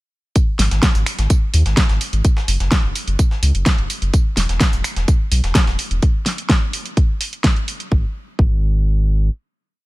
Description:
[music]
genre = progressive house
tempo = 127 BPM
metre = 4/4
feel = straight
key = G# minor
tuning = A4 = 439 Hz
[part]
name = breakbeat sampler-style drum kit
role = drums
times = 0.4-5.8 s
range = hi-hat, snare drum, tambourine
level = -29 LUFS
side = equal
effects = overdrive, sidechain pumping on perc, high-pass filter on perc, high-pass filter on snare, sidechain pumping on hats, high-pass filter on hats, high-pass filter on room
[part]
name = electronic kick drum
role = drums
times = 0.4-8.5 s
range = none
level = -16 LUFS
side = equal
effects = none
[part]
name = pop drum kit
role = drums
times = 0.4-7.9 s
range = finger snaps, hi-hat, snare drum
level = -21 LUFS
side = equal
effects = none
[part]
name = round analog bass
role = bass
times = 0.6-9.3 s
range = E1 to D#2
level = -17 LUFS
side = equal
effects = sidechain pumping
[sound]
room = little or no reverb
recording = none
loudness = -15 LUFS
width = side -20 dB against mid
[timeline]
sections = 0.4-7.9 drop; 7.9-9.9 final note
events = drop 0.4-7.9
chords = none

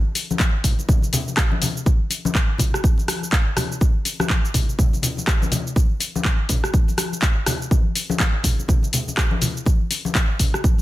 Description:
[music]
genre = house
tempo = 123 BPM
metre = 4/4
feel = swing 60% on 16ths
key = none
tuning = none
[part]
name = congas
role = percussion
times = 0.1-10.8 s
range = none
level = -26 LUFS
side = left 3 dB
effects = none
[part]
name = house drum kit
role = drums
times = 0.2-10.8 s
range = handclaps, hi-hat, rim click, shaker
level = -24 LUFS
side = equal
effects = none
[part]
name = electronic kick drum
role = drums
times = 0.4-10.8 s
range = none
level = -18 LUFS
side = equal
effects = none
[sound]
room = little or no reverb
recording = none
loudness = -18 LUFS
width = side -16 dB against mid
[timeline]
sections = 0.0-10.8 A section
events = none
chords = none

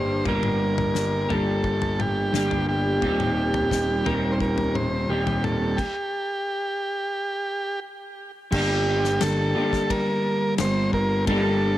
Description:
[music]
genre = psychedelic rock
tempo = 87 BPM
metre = 4/4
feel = straight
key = unclear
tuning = A4 = 445 Hz
[part]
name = combo organ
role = melody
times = 0.0-11.8 s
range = G4 to C5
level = -26 LUFS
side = right 1 dB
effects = tape echo
[part]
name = electric guitar through a small old amp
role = riff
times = 0.0-11.8 s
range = Eb2 to G4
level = -24 LUFS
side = equal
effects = rotary speaker
[part]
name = fuzz picked electric bass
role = bass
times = 0.0-11.8 s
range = Eb1 to G1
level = -27 LUFS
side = equal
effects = overdrive
[part]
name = damped 70s drum kit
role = drums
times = 0.3-11.4 s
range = crash cymbal, kick drum, ride cymbal, snare drum, toms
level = -31 LUFS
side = left 3 dB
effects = none
[sound]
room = light reverb, studio reverb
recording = 1960s-style stereo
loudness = -21 LUFS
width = side -14 dB against mid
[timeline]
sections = 0.0-8.5 A section; 8.5-11.8 B section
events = stop 5.8-8.5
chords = 0.0 Gmadd9; 3.0 Eb6; 8.5 Gmadd9

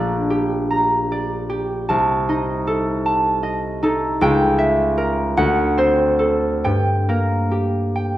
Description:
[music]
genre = classical, solo harp piece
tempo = 45-53 BPM (dotted quarters)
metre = 6/8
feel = rubato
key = G minor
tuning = A4 = 440 Hz
[part]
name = concert harp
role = solo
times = 0.0-8.2 s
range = Bb1 to Bb5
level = -17 LUFS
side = equal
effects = none
[sound]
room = wet recital hall reverb, RT60 1.5 s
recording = worn, warbling old tape, cassette tape, warbly pitch drift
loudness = -17 LUFS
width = side -14 dB against mid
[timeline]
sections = 0.0-8.2 A section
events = none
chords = 0.0 Gm/Bb; 1.9 Adim/C; 4.2 C#dim7; 5.4 D7; 6.7 Gm

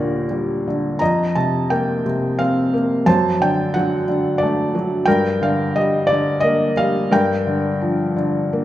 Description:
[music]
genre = classical, lyrical solo piano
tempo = 88 BPM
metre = 3/4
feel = rubato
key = G minor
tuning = A4 = 438 Hz
[part]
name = felt-muted upright piano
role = solo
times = 0.0-8.6 s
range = Eb2 to Bb5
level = -16 LUFS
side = equal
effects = none
[sound]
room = wet recital hall reverb, RT60 1.5 s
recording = recorded in a church or concert hall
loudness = -16 LUFS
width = side -13 dB against mid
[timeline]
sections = 0.0-8.6 A section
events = none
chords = 0.0 Ebmaj7; 1.0 F7sus4; 3.1 D7/F#; 5.1 Gm; 7.1 Gm7

